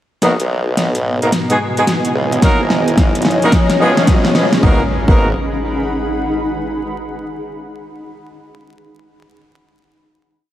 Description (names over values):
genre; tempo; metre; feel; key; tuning
glitch hop; 109 BPM; 4/4; swing 64% on 16ths; G# minor; A4 = 440 Hz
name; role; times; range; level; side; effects
dark analog pad; sustained chords; 1.0-4.9 s; F#3 to D#5; -23 LUFS; left 2 dB; chorus, phaser, sidechain pumping
mellow horn section; stabs; 0.2-5.3 s; G#3 to A#4; -18 LUFS; equal; sidechain pumping, diffuse ambient delay
formant-sweep wobble bass; bass; 0.2-5.3 s; G#1 to C#2; -19 LUFS; equal; chorus, overdrive, high-pass filter
pop drum kit; drums; 0.2-4.6 s; hi-hat, snare drum; -19 LUFS; equal; overdrive
riser and impact; sound effects; 2.1-6.8 s; none; -24 LUFS; equal; none
granular cloud pad; texture; 0.9-6.8 s; B3 to B5; -21 LUFS; equal; built-in reverb, lush chorus, sidechain pumping
electronic kick drum; drums; 2.4-5.2 s; none; -13 LUFS; equal; overdrive
room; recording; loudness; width
wet church reverb, RT60 3.9 s; dreamy mix soaked in reverb, vinyl crackle; -12 LUFS; side -12 dB against mid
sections
0.2-4.6 build; 4.6-6.8 final chord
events
build-up 0.2-4.6; drum fill 0.2-4.6; filter sweep on analog synth pad 0.2-4.6; riser 2.1-4.6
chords
0.2 G#m7; 1.3 Emaj7/G#; 2.4 D#m7/G#; 3.5 C#7/G#; 4.6 G#m7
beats
| 0.23 0.78 1.33 1.88 | 2.43 2.98 3.53 4.08 | 4.63 5.18 5.73 6.28